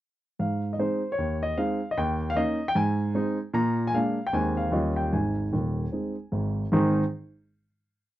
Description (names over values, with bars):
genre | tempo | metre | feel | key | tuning
jazz, stride piano | 152 BPM | 4/4 | swing 60% on 8ths | Ab major | A4 = 439 Hz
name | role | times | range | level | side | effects
warm grand piano | solo | 0.4-7.0 s | Eb1 to Bb5 | -24 LUFS | equal | none
room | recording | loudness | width
little or no reverb | dry, close 1970s-style studio recording | -24 LUFS | side -14 dB against mid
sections
0.4-6.7 A section; 6.7-8.2 final chord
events
none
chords
0.4 Ab; 2.0 Eb5; 2.8 Ab; 3.5 Bb7; 4.3 Ab/Eb; 4.7 Eb9; 5.1 Ab